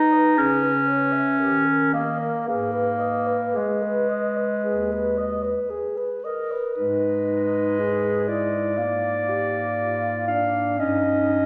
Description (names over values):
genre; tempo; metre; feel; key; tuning
classical, lyrical piece for single-reed quartet; 54-62 BPM; 4/4; rubato; G# minor; A4 = 440 Hz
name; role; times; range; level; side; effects
mellow clarinet; melody; 0.0-11.5 s; A#4 to E#5; -28 LUFS; equal; none
warm alto saxophone; second line; 0.0-11.5 s; D4 to E5; -31 LUFS; equal; none
bright clarinet; accompaniment; 0.0-11.5 s; G#3 to D#4; -25 LUFS; equal; none
mellow bass clarinet; bass; 0.4-11.5 s; D#2 to D#3; -37 LUFS; equal; none
room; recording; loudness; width
wet recital hall reverb, RT60 1.5 s; none; -23 LUFS; mono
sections
0.0-6.8 A section; 6.8-11.5 B section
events
none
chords
0.4 C#m7; 1.4 D#; 2.5 G#m; 8.8 A#7/G#; 10.8 D#7/G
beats
0.37 1.40 | 2.47 3.56 4.66 5.72 | 6.78 7.80 8.79 9.79 | 10.78